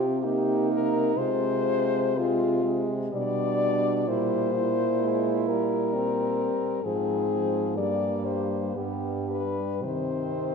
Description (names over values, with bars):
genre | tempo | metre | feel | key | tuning
classical, lyrical piece for horn quartet | 54-66 BPM | 3/4 | rubato | unclear | A4 = 441 Hz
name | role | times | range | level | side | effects
warm French horn | melody | 0.0-10.5 s | F4 to D5 | -28 LUFS | left 6 dB | none
warm French horn | second line | 0.0-10.5 s | Bb3 to F4 | -30 LUFS | right 7 dB | none
warm French horn | accompaniment | 0.0-10.5 s | Eb3 to C4 | -32 LUFS | left 1 dB | none
mellow French horn | bass | 0.0-10.5 s | G2 to C3 | -30 LUFS | right 1 dB | none
room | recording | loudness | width
moderate church reverb, RT60 2.4 s | minimal, uncompressed stereo recording | -24 LUFS | side -5 dB against mid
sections
0.0-10.5 A section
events
none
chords
0.0 Cm; 1.2 Fm/C; 3.1 G/B; 4.1 C7/Bb; 6.8 Fm/Ab; 7.8 C5/G; 9.8 Cm